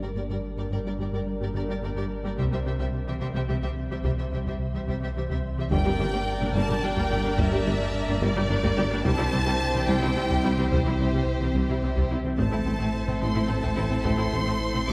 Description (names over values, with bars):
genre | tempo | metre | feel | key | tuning
cinematic, hybrid orchestral and electronic film score | 72 BPM (dotted quarters) | 6/8 | straight | G dorian | A4 = 436 Hz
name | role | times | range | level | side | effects
rich studio violin section | second line | 0.0-14.9 s | G4 to E5 | -37 LUFS | equal | none
rich symphonic viola section | accompaniment | 0.0-14.9 s | G3 to G4 | -36 LUFS | equal | low-pass filter
soft additive organ-like pad | sustained chords | 0.0-14.9 s | G3 to E5 | -37 LUFS | equal | ensemble chorus, built-in reverb, low-pass filter
thumb-piano-like synth pluck | arpeggios | 0.0-14.9 s | C3 to A4 | -38 LUFS | equal | none
smooth synth bass | riff | 0.0-14.9 s | C2 to A3 | -35 LUFS | equal | none
clear symphonic cello section | bass | 0.0-14.9 s | G2 to C3 | -37 LUFS | equal | none
warm sub bass | bass | 0.0-14.9 s | G1 to C2 | -35 LUFS | equal | none
clear chamber double bass section | bass | 0.2-14.9 s | G1 to C2 | -37 LUFS | equal | none
taiko ensemble | drums | 2.4-14.9 s | none | -35 LUFS | equal | none
rich symphonic violin section | melody | 5.7-14.9 s | C5 to D6 | -34 LUFS | equal | low-pass filter
mellow French horn section | sustained chords | 5.7-14.9 s | Bb3 to E4 | -38 LUFS | equal | none
dark tuba | bass | 5.7-14.9 s | G1 to C2 | -36 LUFS | equal | none
room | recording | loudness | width
wet concert hall reverb, RT60 2.5 s | none | -26 LUFS | mono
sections
0.0-5.7 A section; 5.7-14.9 B section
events
filter sweep 0.0-5.7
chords
0.0 Gm; 2.4 C; 5.7 Gm; 9.1 C; 12.4 Am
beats
| 0.72 1.55 | 2.38 3.22 | 4.05 4.88 | 5.72 6.55 | 7.38 8.22 | 9.05 9.88 | 10.72 11.55 | 12.38 13.22 | 14.05 14.88